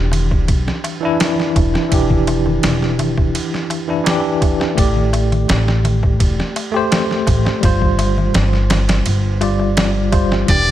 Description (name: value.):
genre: trip hop.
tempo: 84 BPM.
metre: 4/4.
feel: straight.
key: unclear.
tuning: A4 = 440 Hz.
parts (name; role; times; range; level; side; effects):
barky tine electric piano; accompaniment; 0.0-10.7 s; E3 to D5; -18 LUFS; equal; medium stereo tremolo, low-pass filter, tape echo.
upright bass; bass; 0.0-10.7 s; E1 to B1; -17 LUFS; equal; none.
trip hop sampler-style drum kit; drums; 0.1-10.7 s; kick drum, ride cymbal, snare drum; -18 LUFS; equal; small room ambience.
darbuka; percussion; 0.1-10.7 s; none; -27 LUFS; left 3 dB; none.
trumpet with metal mute; melody; 10.5-10.7 s; D5; -14 LUFS; equal; vintage 12-bit sampler grit.
room: little or no reverb.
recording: none.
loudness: -14 LUFS.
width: side -12 dB against mid.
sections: 0.0-10.7 A section.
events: filter sweep on tine electric piano 0.0-10.7.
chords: 0.0 Em7; 4.8 A7sus4; 7.6 G7sus4.